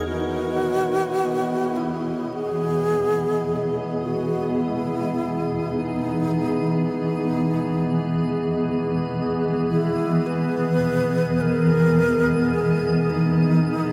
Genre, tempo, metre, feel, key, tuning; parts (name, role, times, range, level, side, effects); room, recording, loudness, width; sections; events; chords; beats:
ambient; free time; E major; A4 = 440 Hz
breathy mellow alto flute; melody; 0.0-13.9 s; D#4 to B4; -27 LUFS; equal; tape echo
granular cloud pad; sustained chords; 0.0-13.9 s; E3 to D#5; -25 LUFS; equal; built-in reverb
pedal harmonium; drone; 0.0-13.9 s; E3 to B3; -33 LUFS; equal
twinkling granular texture; texture; 0.0-13.9 s; D#5 to D#6; -43 LUFS; equal; built-in reverb
wet huge ambient reverb, RT60 8.1 s; -22 LUFS; mono
0.1-13.9 A section
fade-in on synth texture 0.1-13.9
0.1 Emaj7
free time